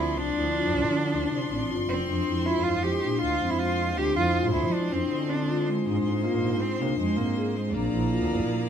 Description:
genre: contemporary instrumental, chamber music in an uneven meter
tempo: 159 BPM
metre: 5/4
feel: straight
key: unclear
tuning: A4 = 443 Hz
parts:
  - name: rich cello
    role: melody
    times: 0.0-8.7 s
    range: Ab3 to G4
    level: -28 LUFS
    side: right 4 dB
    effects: none
  - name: clear chamber string section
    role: sustained chords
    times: 0.0-8.7 s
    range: F3 to C6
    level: -34 LUFS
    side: left 2 dB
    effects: none
  - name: dark double bass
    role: bass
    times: 0.0-8.6 s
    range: F1 to F3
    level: -30 LUFS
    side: right 3 dB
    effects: none
  - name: marimba with soft mallets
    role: arpeggios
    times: 0.2-8.5 s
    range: C4 to Ab4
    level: -28 LUFS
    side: left 4 dB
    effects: none
room: light reverb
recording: none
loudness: -24 LUFS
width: side -8 dB against mid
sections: 0.0-8.7 A section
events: none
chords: 0.0 Dm7; 2.1 Fm; 5.9 Ab; 7.7 Bb

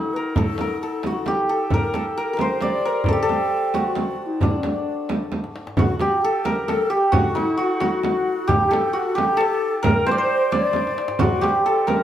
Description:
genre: Persian modal ensemble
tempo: 89 BPM (dotted quarters)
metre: 6/8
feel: straight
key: D dastgah homayun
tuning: A4 = 440 Hz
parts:
  - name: santur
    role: melody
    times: 0.0-12.0 s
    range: D4 to D5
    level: -21 LUFS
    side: equal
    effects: none
  - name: breathy low ney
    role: second line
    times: 0.0-12.0 s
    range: D4 to D5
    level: -27 LUFS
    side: left 4 dB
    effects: none
  - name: frame drum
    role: percussion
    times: 0.4-12.0 s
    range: none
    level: -24 LUFS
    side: right 2 dB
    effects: none
  - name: tombak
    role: percussion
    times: 0.4-12.0 s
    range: none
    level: -26 LUFS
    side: left 1 dB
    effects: none
  - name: breathy mellow shakuhachi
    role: second line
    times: 5.8-12.0 s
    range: E4-48c to D5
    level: -28 LUFS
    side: right 2 dB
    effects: none
room: wet studio reverb, RT60 0.6 s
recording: heard from further back in the room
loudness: -18 LUFS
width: side -11 dB against mid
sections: 0.0-5.8 A section; 5.8-12.0 B section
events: drum fill 5.3-5.8, 10.7-11.2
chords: none

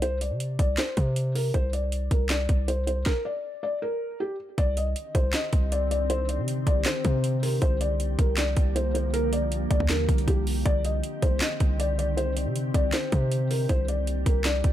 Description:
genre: hip hop, trap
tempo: 158 BPM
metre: 4/4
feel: half-time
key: C minor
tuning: A4 = 440 Hz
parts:
  - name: felt-muted upright piano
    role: melody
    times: 0.0-14.7 s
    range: G4 to Eb5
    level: -30 LUFS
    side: left 2 dB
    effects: low-pass filter
  - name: hard-hitting 808-style bass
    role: bass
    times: 0.0-14.7 s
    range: C2 to C3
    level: -26 LUFS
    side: equal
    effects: none
  - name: trap drum kit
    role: drums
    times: 0.0-14.7 s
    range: handclaps, hi-hat, kick drum, snare drum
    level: -27 LUFS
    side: equal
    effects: none
  - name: glassy FM pad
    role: sustained chords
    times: 5.4-14.7 s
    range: D3 to G4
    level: -33 LUFS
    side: equal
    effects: ensemble chorus, built-in reverb
room: digital ambience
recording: none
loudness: -23 LUFS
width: side -12 dB against mid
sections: 0.0-4.6 A section; 4.6-14.7 B section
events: stop 3.1-4.6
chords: 0.0 Csus2; 4.6 Cmadd9; 7.6 Gm7/C; 10.7 Cmadd9; 13.7 Gm7/C

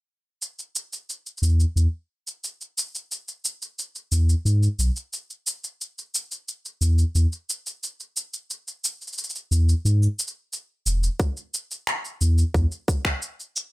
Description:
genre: folktronica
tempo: 89 BPM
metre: 4/4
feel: straight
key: E major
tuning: A4 = 440 Hz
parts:
  - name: electronic shaker and finger snaps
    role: drums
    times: 0.4-13.7 s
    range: none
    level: -28 LUFS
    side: equal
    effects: none
  - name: warm sub bass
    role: bass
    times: 1.4-12.7 s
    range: E1 to G#2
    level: -18 LUFS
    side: equal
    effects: none
  - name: electronic kick drum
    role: drums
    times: 11.2-13.2 s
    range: none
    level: -23 LUFS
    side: equal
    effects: none
room: little or no reverb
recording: none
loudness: -23 LUFS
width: side -21 dB against mid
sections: 0.4-11.2 A section; 11.2-13.7 B section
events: none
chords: none

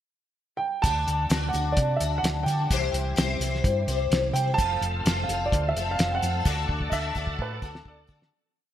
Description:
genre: folk rock and heartland rock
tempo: 128 BPM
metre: 4/4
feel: straight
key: unclear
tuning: A4 = 443 Hz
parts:
  - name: dark baby grand piano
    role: melody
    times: 0.6-7.1 s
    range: D5 to A5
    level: -29 LUFS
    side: right 3 dB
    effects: ping-pong delay
  - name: picked twelve-string acoustic guitar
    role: accompaniment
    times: 0.8-8.3 s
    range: C3 to C5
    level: -30 LUFS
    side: left 5 dB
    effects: ensemble chorus
  - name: hollow-body short-scale fingered electric bass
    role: bass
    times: 0.8-8.3 s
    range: F1 to D3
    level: -28 LUFS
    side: equal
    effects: none
  - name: cloth-damped thuddy drum kit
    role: drums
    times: 0.8-8.3 s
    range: hi-hat, kick drum, snare drum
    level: -27 LUFS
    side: equal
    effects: none
  - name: bright tonewheel organ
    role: sustained chords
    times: 4.6-8.3 s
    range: A3 to A4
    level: -36 LUFS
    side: right 1 dB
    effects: overdrive, chorus vibrato, slow rotary speaker
  - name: warm upright piano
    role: second line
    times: 6.9-8.2 s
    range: A4 to E5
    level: -34 LUFS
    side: right 2 dB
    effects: lush chorus
room: light reverb, studio ambience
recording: bright 1980s-style digital production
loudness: -23 LUFS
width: side -11 dB against mid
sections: 0.0-0.8 pickup bar; 0.8-8.3 pre-chorus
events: fade-out 6.5-8.3; drum fill 6.5-8.3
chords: 0.0 N.C.; 0.8 D; 2.7 C; 4.6 F; 6.5 D

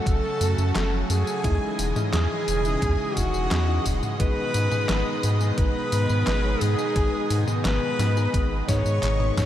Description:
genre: synthwave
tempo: 87 BPM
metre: 4/4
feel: straight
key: unclear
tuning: A4 = 440 Hz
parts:
  - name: lush unison pad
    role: sustained chords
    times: 0.0-9.5 s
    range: B2 to D#5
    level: -30 LUFS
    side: right 1 dB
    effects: chorus, vintage 12-bit sampler grit, sidechain pumping
  - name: FM electric piano with soft pad layer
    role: stabs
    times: 0.0-9.5 s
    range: F#3 to C#5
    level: -33 LUFS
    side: left 2 dB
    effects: chorus, diffuse ambient delay
  - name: breathy alto saxophone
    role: melody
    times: 0.1-9.5 s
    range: F#4 to C#5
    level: -28 LUFS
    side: equal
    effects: analog delay
  - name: string machine, violins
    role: second line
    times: 0.1-9.5 s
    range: F#5 to C#6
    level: -36 LUFS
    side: equal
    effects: ensemble chorus, diffuse ambient delay
  - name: round analog bass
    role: bass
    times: 0.1-9.5 s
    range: E1 to G#2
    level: -24 LUFS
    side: equal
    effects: tube saturation
  - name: detuned 8-bit digital drum machine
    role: drums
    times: 0.1-9.5 s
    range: handclaps, hi-hat, snare drum, tambourine, toms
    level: -30 LUFS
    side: equal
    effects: none
  - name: electronic kick drum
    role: drums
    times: 0.1-9.5 s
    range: none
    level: -26 LUFS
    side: equal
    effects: none
room: moderate huge ambient reverb, RT60 7.3 s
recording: dreamy mix soaked in reverb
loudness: -21 LUFS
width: side -11 dB against mid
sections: 0.0-9.5 A section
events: drum fill 8.7-9.5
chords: 0.0 F#m; 1.4 C#madd9/E; 4.2 G#m

